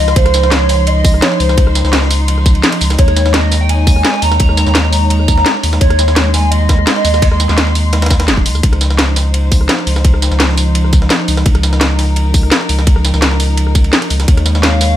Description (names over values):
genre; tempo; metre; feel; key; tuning
liquid drum and bass; 170 BPM; 4/4; straight; Db major; A4 = 437 Hz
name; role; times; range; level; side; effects
hollow clarinet-like synth lead; melody; 0.0-7.9, 14.6-15.0 s; C5 to Bb5; -17 LUFS; equal; phaser, lush chorus, digital delay
dark chamber string section; sustained chords; 0.0-15.0 s; F3 to C6; -19 LUFS; equal; sidechain pumping
warm sub bass; bass; 0.0-15.0 s; Eb1 to Eb2; -13 LUFS; equal; none
breakbeat sampler-style drum kit; drums; 0.1-14.9 s; hi-hat, ride cymbal, snare drum; -22 LUFS; right 1 dB; high-pass filter on cymbals, high-pass filter on snare, high-pass filter on hats
drum and bass drum kit; drums; 0.1-14.9 s; hi-hat, rim click, snare drum, tambourine; -16 LUFS; equal; none
electronic kick drum; drums; 0.2-14.4 s; none; -11 LUFS; equal; none
room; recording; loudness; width
digital ambience; none; -9 LUFS; side -11 dB against mid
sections
0.0-15.0 A section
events
none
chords
0.0 Dbmaj9; 3.0 Eb7sus4; 8.6 Dbmaj9; 14.3 Eb7sus4